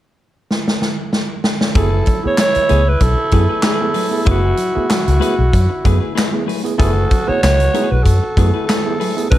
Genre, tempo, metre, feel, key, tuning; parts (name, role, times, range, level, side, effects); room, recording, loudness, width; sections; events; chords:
funk; 95 BPM; 4/4; straight; F# minor; A4 = 438 Hz
swinging big-band drum kit; drums; 0.5-9.4 s; handclaps, hi-hat, kick drum, snare drum; -18 LUFS; equal
overdriven tine electric piano; stabs; 1.7-9.4 s; F#3 to A4; -23 LUFS; right 4 dB
breathy alto saxophone; melody; 1.8-9.4 s; F#4 to C#5; -19 LUFS; right 1 dB; plate reverb
growling tenor saxophone; second line; 1.8-9.4 s; E4 to D#5; -25 LUFS; right 2 dB
clean electric guitar; accompaniment; 1.8-9.4 s; A3 to B4; -24 LUFS; left 9 dB
vintage muted fingered electric bass; bass; 1.8-9.4 s; F#1 to F#2; -15 LUFS; equal
light reverb; -13 LUFS; side -14 dB against mid
0.0-1.8 A section; 1.8-9.4 B section
drum fill 0.5-1.8
0.0 N.C.; 1.8 F#m11